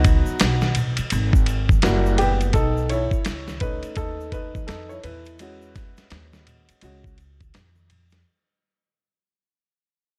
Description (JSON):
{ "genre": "hip hop, jazz-hop", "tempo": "84 BPM", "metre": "4/4", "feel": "swing 62% on 16ths", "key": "unclear", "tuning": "A4 = 440 Hz", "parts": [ { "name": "warm upright piano", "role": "accompaniment", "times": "0.0-7.2 s", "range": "F#3 to C#5", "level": "-29 LUFS", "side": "equal", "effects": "none" }, { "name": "upright bass", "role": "bass", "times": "0.0-8.2 s", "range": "F#1 to E#2", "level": "-26 LUFS", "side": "equal", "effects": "none" }, { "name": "dusty soul sampler-style drum kit", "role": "drums", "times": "0.0-8.2 s", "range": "hi-hat, kick drum, ride cymbal, snare drum", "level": "-24 LUFS", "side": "equal", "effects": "none" }, { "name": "congas and tube shaker", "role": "percussion", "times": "0.1-8.2 s", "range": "none", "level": "-36 LUFS", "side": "equal", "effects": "none" } ], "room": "small room ambience", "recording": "none", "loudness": "-22 LUFS", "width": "mono", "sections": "0.0-8.3 A section", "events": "fade-out 0.0-8.3; upright piano solo 0.0-8.3", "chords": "0.0 C#9sus4; 1.8 F#7b9; 2.5 B7; 5.0 E6" }